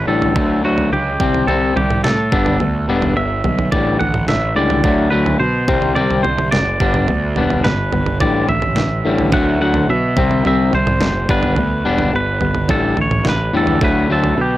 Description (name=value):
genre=indie rock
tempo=107 BPM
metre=4/4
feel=straight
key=unclear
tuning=A4 = 440 Hz
part: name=twangy electric guitar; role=melody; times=0.0-14.6 s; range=F#4 to F#5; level=-20 LUFS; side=right 1 dB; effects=warbly pitch drift, slapback echo, plate reverb
part: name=electric guitar at the edge of break-up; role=riff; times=0.0-14.6 s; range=A2 to D4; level=-18 LUFS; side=left 3 dB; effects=none
part: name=fuzz picked electric bass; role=bass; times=0.0-14.6 s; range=E1 to B2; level=-20 LUFS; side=right 1 dB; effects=overdrive
part: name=detuned 8-bit digital drum machine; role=drums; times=0.2-14.4 s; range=kick drum, snare drum, toms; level=-21 LUFS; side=right 2 dB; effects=overdrive
room=light reverb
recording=none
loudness=-14 LUFS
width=side -15 dB against mid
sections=0.0-14.6 A section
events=none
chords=0.4 D; 1.2 C5; 2.3 Gadd9; 3.7 A7sus4; 4.8 D; 5.7 C5; 6.8 G; 8.2 A7sus4; 9.3 D; 10.2 C5; 11.3 G; 12.7 A7sus4; 13.8 D